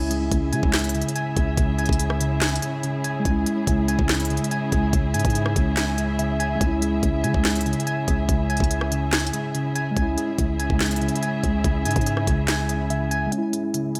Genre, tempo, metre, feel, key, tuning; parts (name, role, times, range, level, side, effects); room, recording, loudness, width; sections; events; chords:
hip hop, trap; 143 BPM; 4/4; half-time; C# minor; A4 = 440 Hz
mellow tine electric piano; accompaniment; 0.0-14.0 s; G#3 to E5; -30 LUFS; equal; low-pass filter
muted symphonic string section; sustained chords; 0.0-14.0 s; C#4 to E5; -35 LUFS; equal; low-pass filter
soft electric-piano-like synth keys; arpeggios; 0.0-14.0 s; C#3 to G#5; -28 LUFS; equal; chorus, low-pass filter
growling 808-style bass; bass; 0.0-13.3 s; C#2 to C#3; -28 LUFS; equal
trap drum kit; drums; 0.1-14.0 s; handclaps, hi-hat, kick drum, rim click, snare drum; -27 LUFS; equal
digital ambience; -23 LUFS; mono
0.0-13.3 A section
0.0 C#m